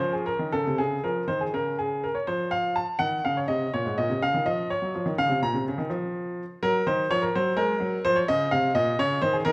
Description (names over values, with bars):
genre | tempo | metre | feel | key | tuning
classical, baroque-style suite movement for grand piano | 83 BPM (dotted quarters) | 6/8 | rubato | Bb minor | A4 = 445 Hz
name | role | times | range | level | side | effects
clear baby grand piano | solo | 0.0-9.5 s | Ab2 to Bb5 | -26 LUFS | equal | none
room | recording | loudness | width
moderate recital hall reverb, RT60 1.6 s | none | -26 LUFS | mono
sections
0.8-9.5 A section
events
none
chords
0.0 Bbm; 0.8 Db; 2.3 F5; 3.7 Bbm; 6.6 Ebm; 7.3 Gbadd9; 8.0 F5; 8.8 Bbm